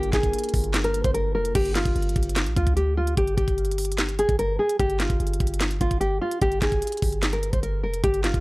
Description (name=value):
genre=hip hop, trap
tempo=148 BPM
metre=4/4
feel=half-time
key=G phrygian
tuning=A4 = 438 Hz
part: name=nylon-string guitar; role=melody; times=0.0-8.4 s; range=F4 to C5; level=-25 LUFS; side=equal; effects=low-pass filter, analog delay
part: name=glass harmonica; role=sustained chords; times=0.0-1.5 s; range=Bb3 to Bb4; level=-35 LUFS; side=equal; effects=none
part: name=warm 808-style bass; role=bass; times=0.0-8.4 s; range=F1 to D2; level=-26 LUFS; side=equal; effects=none
part: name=trap drum kit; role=drums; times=0.0-8.4 s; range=crash cymbal, handclaps, hi-hat, kick drum, snare drum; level=-26 LUFS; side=equal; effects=none
room=digital ambience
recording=dry, gritty hardware recording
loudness=-21 LUFS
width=side -22 dB against mid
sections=0.0-1.6 A section; 1.6-8.4 B section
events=none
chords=0.0 Gm7; 1.6 G7(no3); 4.8 Fmadd9